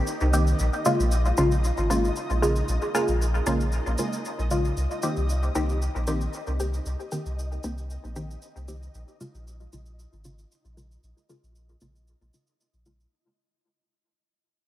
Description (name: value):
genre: dub techno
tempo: 115 BPM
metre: 4/4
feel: straight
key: unclear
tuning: A4 = 440 Hz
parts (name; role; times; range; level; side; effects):
- flickering grainy texture; texture; 0.0-13.1 s; Eb4 to Eb5; -38 LUFS; equal; built-in reverb
- cabasa; percussion; 0.1-13.1 s; none; -39 LUFS; right 1 dB; none
- warm sub bass; bass; 0.2-13.1 s; Ab1 to C2; -26 LUFS; equal; none
- filtered dub chord stab; stabs; 0.3-13.1 s; Db3 to G4; -26 LUFS; equal; chorus, phaser, dub echo
room: light reverb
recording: vinyl crackle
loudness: -23 LUFS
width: side -14 dB against mid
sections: 0.0-13.1 A section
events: fade-out 0.0-13.1; filter sweep on synth stab 0.0-13.1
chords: 0.0 Cm7; 0.6 Bbm7; 4.8 Cm7; 8.9 Bbm7